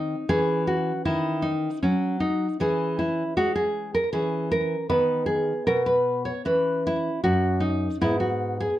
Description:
classical, baroque-style dance for nylon-string guitar; 78 BPM; 3/4; rubato; B major; A4 = 441 Hz
nylon-string guitar; solo; 0.0-8.8 s; F#2 to C#5; -22 LUFS; equal; slapback echo
light reverb; close, detailed microphones; -22 LUFS; side -13 dB against mid
0.0-8.8 A section
0.3 C#m; 2.6 C#m/E; 4.1 A#m7b5/E; 4.9 B/D#; 6.5 C#m7/E; 7.2 F#5; 8.0 G#m7

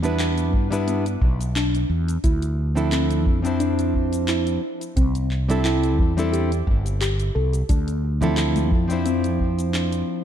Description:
sunset chillout; 88 BPM; 4/4; swing 54% on 16ths; D dorian; A4 = 440 Hz
nylon-string guitar; accompaniment; 0.0-10.2 s; F3 to C5; -24 LUFS; moving between left 3 dB and right 4 dB; auto-pan, ping-pong delay
mellow fretless electric bass; bass; 0.0-10.0 s; G1 to G2; -23 LUFS; equal
deep house drum kit; drums; 0.0-10.1 s; handclaps, hi-hat, shaker; -31 LUFS; equal; studio reverb
soft round pluck; arpeggios; 0.2-10.0 s; B3 to A4; -28 LUFS; left 2 dB; chorus, ping-pong delay
electronic kick drum; drums; 0.5-9.5 s; -21 LUFS; equal; overdrive, studio reverb
congas; percussion; 8.2-8.7 s; -28 LUFS; left 5 dB
light reverb, digital ambience; dark, warm production; -19 LUFS; side -10 dB against mid
0.0-10.2 A section
0.0 Em7; 2.2 Dm9; 4.6 C6; 7.7 Dm9

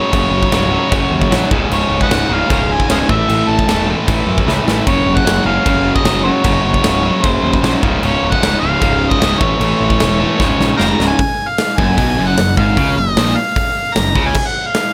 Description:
punk rock; 152 BPM; 4/4; straight; A4 = 440 Hz
overdriven harmonica; melody; 0.0-14.9 s; Bb4 to Bb5; -20 LUFS; equal
distorted electric guitar; riff; 0.0-14.3 s; Db2 to A3; -19 LUFS; equal; overdrive
fuzz picked electric bass; bass; 0.1-14.3 s; Db1 to Gb2; -21 LUFS; equal; overdrive
big rock drum kit; drums; 0.1-14.8 s; crash cymbal, hi-hat, kick drum, snare drum; -20 LUFS; equal
little or no reverb; -14 LUFS; mono
0.0-11.2 A section; 11.2-14.9 B section
drum fill 4.5-4.9, 10.4-11.2
0.0 Gb5; 1.5 Db5; 3.1 A5; 4.9 Gb5; 7.8 Db; 9.4 A; 10.4 Db; 11.2 Gb5; 14.3 Db (rootless)

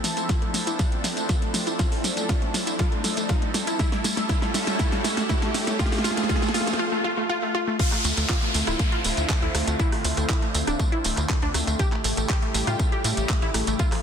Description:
progressive house; 120 BPM; 4/4; straight; D minor; A4 = 440 Hz
lush unison pad; sustained chords; 0.0-14.0 s; C3 to A4; -31 LUFS; equal; chorus, phaser, sidechain pumping
wide unison pluck; arpeggios; 0.0-14.0 s; F3 to G4; -28 LUFS; equal; sidechain pumping, dub echo
pop drum kit; drums; 0.0-14.0 s; crash cymbal, handclaps, hi-hat, rim click, snare drum, tambourine; -27 LUFS; right 1 dB
riser and downlifter; sound effects; 0.0-11.8 s; -32 LUFS; equal
electronic kick drum; drums; 0.3-13.9 s; -24 LUFS; equal
tight sequencer bass; bass; 8.0-13.8 s; D1 to A2; -27 LUFS; equal; sidechain pumping
moderate lush hall reverb, RT60 2.2 s; dense, heavily limited modern master; -21 LUFS; side -7 dB against mid
0.0-7.8 A section; 7.8-14.0 B section
build-up 0.0-7.8; drum fill 0.0-6.8; riser 0.0-6.8; filter sweep on synth pluck 0.0-7.8; drop 7.8-14.0
0.0 Dm9; 3.8 A7; 5.8 Fmaj7; 7.8 Dm9; 11.8 A7

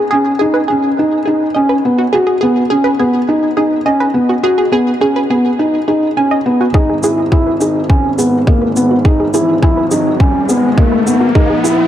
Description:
piano and strings electronica; 104 BPM; 4/4; straight; G# minor; A4 = 438 Hz
wide unison pluck; arpeggios; 0.0-11.8 s; F#4 to G#5; -19 LUFS; right 1 dB; sidechain pumping, digital delay
felt-muted upright piano; riff; 0.1-11.8 s; A#3 to F#4; -12 LUFS; equal; digital delay
clear chamber double bass section; bass; 6.7-11.9 s; G#1 to A#1; -20 LUFS; right 2 dB; sidechain pumping, high-pass filter
electronic kick drum; drums; 6.7-11.5 s; -11 LUFS; equal
riser; sound effects; 8.7-11.9 s; -21 LUFS; left 2 dB
shaker; drums; 7.0-11.8 s; -23 LUFS; right 1 dB
moderate huge ambient reverb, RT60 8.1 s; dark, warm production; -10 LUFS; side -11 dB against mid
0.0-6.7 A section; 6.7-11.9 B section
build-up 6.7-11.9; riser 8.7-11.9
0.0 Bsus2; 6.7 G#m; 11.4 N.C.

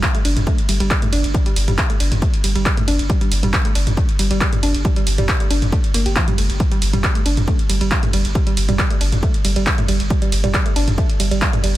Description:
driving peak-time techno; 137 BPM; 4/4; straight; A4 = 438 Hz
woody wave-folded pluck; riff; 0.0-11.7 s; F3 to G4; -23 LUFS; right 2 dB; chorus, sidechain pumping, dub echo
saturated sub bass; bass; 0.0-11.7 s; G1; -20 LUFS; equal; overdrive, sidechain pumping, low-pass filter
electronic kick drum; drums; 0.0-11.5 s; -19 LUFS; equal
punchy analog drum machine; drums; 0.0-11.7 s; handclaps, hi-hat, ride cymbal, toms; -22 LUFS; equal
little or no reverb; dense, heavily limited modern master; -15 LUFS; side -15 dB against mid
0.0-11.8 A section

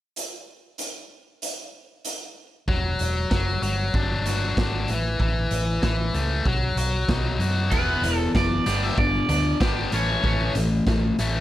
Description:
indie rock; 95 BPM; 4/4; straight; A4 = 443 Hz
raw garage drum kit; drums; 0.2-11.3 s; crash cymbal, hi-hat, kick drum, snare drum; -27 LUFS; equal
high-gain distorted guitar; riff; 2.7-11.4 s; E3 to G#4; -25 LUFS; left 3 dB; distortion
hollow-body short-scale fingered electric bass; bass; 2.7-11.4 s; E1 to F#2; -26 LUFS; equal
crunchy overdriven guitar; melody; 7.7-10.5 s; B4 to E5; -26 LUFS; right 2 dB; slapback echo
little or no reverb; -21 LUFS; side -14 dB against mid
0.2-2.7 A section; 2.7-7.7 B section; 7.7-11.4 C section
0.2 N.C.; 2.7 Esus2; 3.6 G5; 4.9 A; 6.5 B; 7.7 Eadd9; 8.7 G; 9.9 A

